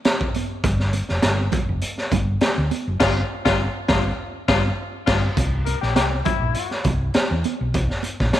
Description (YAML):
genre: funk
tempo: 101 BPM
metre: 4/4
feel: straight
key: C mixolydian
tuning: A4 = 440 Hz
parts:
  - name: raw garage drum kit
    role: drums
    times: 0.0-8.4 s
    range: crash cymbal, hi-hat, kick drum, snare drum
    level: -21 LUFS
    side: equal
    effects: none
  - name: congas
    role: percussion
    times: 0.1-8.4 s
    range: none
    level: -30 LUFS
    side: right 10 dB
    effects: none
  - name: hollow-body short-scale fingered electric bass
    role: bass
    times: 0.6-8.3 s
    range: F1 to E2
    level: -22 LUFS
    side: equal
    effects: none
  - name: breathy tenor saxophone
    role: second line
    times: 3.0-6.8 s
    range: E4 to Bb4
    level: -26 LUFS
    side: left 10 dB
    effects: none
room: light reverb, studio reverb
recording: 1960s-style stereo with parts hard left and right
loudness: -19 LUFS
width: side -12 dB against mid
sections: 0.0-5.4 A section; 5.4-8.4 B section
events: band accent 3.0-5.4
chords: 0.0 N.C.; 0.6 G5; 5.4 C7(no3)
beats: 0.05 | 0.64 1.23 1.82 2.42 | 3.01 3.60 4.19 4.78 | 5.38 5.97 6.56 7.16 | 7.75 8.34